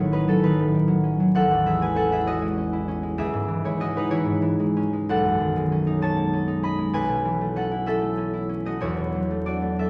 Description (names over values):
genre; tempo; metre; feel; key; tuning
classical, solo harp piece; 65 BPM (dotted quarters); 6/8; rubato; A lydian; A4 = 440 Hz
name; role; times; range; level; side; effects
concert harp; solo; 0.0-9.9 s; E1 to B5; -24 LUFS; equal; none
room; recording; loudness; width
wet recital hall reverb, RT60 1.5 s; heard from further back in the room, vinyl crackle; -24 LUFS; mono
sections
0.0-9.9 A section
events
none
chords
0.0 B9/A; 1.4 Amaj7; 3.2 C#m7; 5.1 B13; 6.9 Aadd9/B; 8.8 E9sus4